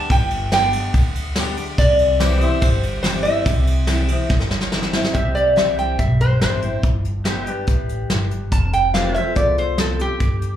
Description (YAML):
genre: honky-tonk and classic country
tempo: 143 BPM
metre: 4/4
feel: straight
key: C major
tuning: A4 = 440 Hz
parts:
  - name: lap resonator guitar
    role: melody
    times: 0.0-10.6 s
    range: G4 to A5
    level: -20 LUFS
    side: equal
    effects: slapback echo
  - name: picked steel-string acoustic guitar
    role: accompaniment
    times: 0.0-10.6 s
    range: E2 to G4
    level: -25 LUFS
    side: left 2 dB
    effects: slapback echo
  - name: pedal steel guitar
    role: sustained chords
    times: 0.0-10.2 s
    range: F4 to E5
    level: -30 LUFS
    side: left 1 dB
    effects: none
  - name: upright bass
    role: bass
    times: 0.1-10.6 s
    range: F1 to D2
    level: -22 LUFS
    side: equal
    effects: none
  - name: soft brush drum kit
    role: drums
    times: 0.1-10.5 s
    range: hi-hat, kick drum, ride cymbal, snare drum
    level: -21 LUFS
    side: equal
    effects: none
room: little or no reverb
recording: live gig heard through the venue's PA, club reverb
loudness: -16 LUFS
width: side -11 dB against mid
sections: 0.0-5.1 A section; 5.1-10.6 B section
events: drum fill 4.3-5.1; resonator guitar played with a steel bar solo 5.1-10.6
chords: 0.0 G; 1.8 C; 6.8 G; 8.5 F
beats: | 0.10 0.53 0.94 1.36 | 1.78 2.21 2.62 3.04 | 3.46 3.89 4.31 4.73 | 5.15 5.57 5.99 6.41 | 6.83 7.25 7.67 8.10 | 8.52 8.94 9.36 9.78 | 10.20